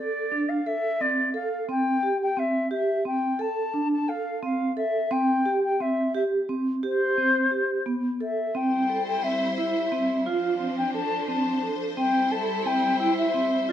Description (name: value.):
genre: contemporary instrumental, contemporary.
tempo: 175 BPM (eighths).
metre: 5/8.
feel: straight.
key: C major.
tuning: A4 = 440 Hz.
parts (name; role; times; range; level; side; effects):
baroque flute; melody; 0.0-13.7 s; C5 to A5; -26 LUFS; left 3 dB; none.
vibraphone with medium mallets; arpeggios; 0.0-13.7 s; B3 to A4; -26 LUFS; right 2 dB; none.
rich studio string section; sustained chords; 8.6-13.7 s; F3 to C5; -32 LUFS; equal; none.
room: light reverb.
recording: close, detailed microphones.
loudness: -23 LUFS.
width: side -10 dB against mid.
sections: 0.0-8.5 A section; 8.5-13.7 A section.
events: none.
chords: 0.0 D5; 1.7 C5; 3.4 D5; 5.1 C5; 8.5 C; 10.3 Dm7; 12.0 C.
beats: 0.31 0.66 1.00 1.34 | 1.68 2.03 2.37 2.71 3.06 | 3.40 3.74 4.08 4.43 4.77 | 5.11 5.46 5.80 6.14 6.48 | 6.83 7.17 7.51 7.86 8.20 | 8.54 8.89 9.23 9.57 9.92 | 10.26 10.60 10.95 11.29 11.63 | 11.98 12.32 12.66 13.01 13.35 | 13.70.